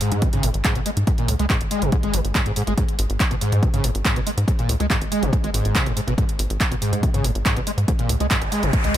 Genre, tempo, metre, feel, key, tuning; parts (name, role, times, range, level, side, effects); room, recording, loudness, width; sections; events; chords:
driving peak-time techno; 141 BPM; 4/4; straight; G# minor; A4 = 440 Hz
screaming distorted acid line; riff; 0.0-9.0 s; G#2 to G#3; -24 LUFS; equal; distortion, ensemble chorus, sidechain pumping, ping-pong delay
techno drum kit; drums; 0.0-9.0 s; handclaps, hi-hat; -26 LUFS; right 1 dB; overdrive, sidechain pumping on hats, sidechain pumping on cymbals
tight sequencer bass; bass; 0.1-9.0 s; G#1 to G#2; -23 LUFS; equal; sidechain pumping
electronic kick drum; drums; 0.2-8.8 s; -22 LUFS; equal
noise sweep; sound effects; 8.2-9.0 s; -28 LUFS; equal
little or no reverb; -18 LUFS; side -12 dB against mid
0.0-9.0 A section
noise sweep 8.2-9.0